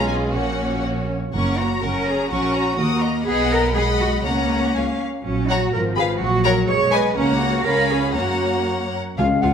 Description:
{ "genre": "quick classical-period movement for symphony orchestra", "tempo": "115-128 BPM", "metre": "2/4", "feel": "rubato", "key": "F# major", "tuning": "A4 = 440 Hz", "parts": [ { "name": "rich chamber violin section", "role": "melody", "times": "0.0-9.5 s", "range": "F5 to D#6", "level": "-28 LUFS", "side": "left 4 dB", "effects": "none" }, { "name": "warm chamber violin section", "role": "second line", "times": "0.0-9.5 s", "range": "E#4 to A#5", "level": "-26 LUFS", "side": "left 4 dB", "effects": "none" }, { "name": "rich chamber viola section", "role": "accompaniment", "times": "0.0-9.5 s", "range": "F3 to F4", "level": "-24 LUFS", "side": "equal", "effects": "none" }, { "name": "rich chamber cello section", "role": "bass", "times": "0.0-9.5 s", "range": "Db2 to C#5", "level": "-23 LUFS", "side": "right 2 dB", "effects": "none" }, { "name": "rich chamber double bass section", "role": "bass", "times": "0.0-9.5 s", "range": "F#1 to F#2", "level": "-25 LUFS", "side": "right 3 dB", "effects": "none" }, { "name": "mellow silver concert flute", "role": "second line", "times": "9.2-9.5 s", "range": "F5 to Gb5", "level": "-20 LUFS", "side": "left 3 dB", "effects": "none" }, { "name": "mellow French horn section", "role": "sustained chords", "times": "9.2-9.5 s", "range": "Ab3 to Db4", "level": "-21 LUFS", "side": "left 5 dB", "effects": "none" }, { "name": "timpani", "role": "percussion", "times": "9.2-9.5 s", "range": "Db3", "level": "-24 LUFS", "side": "equal", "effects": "none" } ], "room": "moderate scoring stage reverb, RT60 1.5 s", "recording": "none", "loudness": "-18 LUFS", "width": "side -7 dB against mid", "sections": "0.0-1.4 A section; 1.4-9.2 A section", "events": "none", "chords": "0.3 F#/A#; 1.4 F#; 2.3 F#/A#; 2.8 D#m; 3.3 G#m7/B; 4.2 F#/C#; 5.2 F#/A#; 5.7 Fdim/Ab; 6.2 F#/A#; 6.7 G#m/B; 7.2 F#/C#; 7.7 C#7; 8.2 F#" }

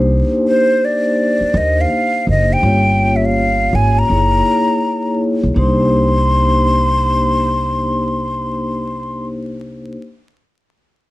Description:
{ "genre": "hip hop, jazz-hop", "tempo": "82 BPM", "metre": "4/4", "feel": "swing 65% on 16ths", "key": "C minor", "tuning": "A4 = 440 Hz", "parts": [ { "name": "vibraphone with soft mallets", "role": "accompaniment", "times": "0.0-10.0 s", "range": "Bb3 to Db5", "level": "-18 LUFS", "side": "left 1 dB", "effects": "none" }, { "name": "upright bass", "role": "bass", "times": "0.0-9.9 s", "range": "F#1 to Eb2", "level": "-17 LUFS", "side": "equal", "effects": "none" }, { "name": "breathy hollow jazz flute", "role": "melody", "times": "0.5-9.3 s", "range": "C5 to C6", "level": "-16 LUFS", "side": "equal", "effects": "none" } ], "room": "moderate studio reverb, RT60 0.6 s", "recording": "vinyl crackle", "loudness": "-13 LUFS", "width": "side -17 dB against mid", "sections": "0.0-5.6 A section; 5.6-8.5 B section", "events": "none", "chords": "0.0 Cm9; 2.6 Gm7b5; 4.1 F#13; 5.6 Cm9" }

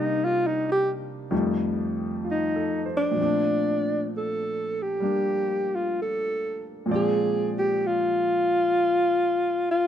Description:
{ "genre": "jazz ballad", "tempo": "65 BPM", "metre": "4/4", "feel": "swing 69% on 8ths", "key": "Bb major", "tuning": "A4 = 440 Hz", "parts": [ { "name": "dark alto saxophone", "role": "melody", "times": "0.0-9.9 s", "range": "D4 to A4", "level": "-23 LUFS", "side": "equal", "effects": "none" }, { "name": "clear grand piano", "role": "accompaniment", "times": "0.0-9.9 s", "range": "F2 to D5", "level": "-28 LUFS", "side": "equal", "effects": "none" } ], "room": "light reverb", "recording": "minimal, uncompressed stereo recording", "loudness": "-22 LUFS", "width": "side -9 dB against mid", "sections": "0.0-3.2 A section; 3.2-9.9 B section", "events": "alto saxophone solo 0.0-3.2", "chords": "0.0 Cm7; 1.3 F7; 3.2 Bbmaj9; 6.9 Bb9" }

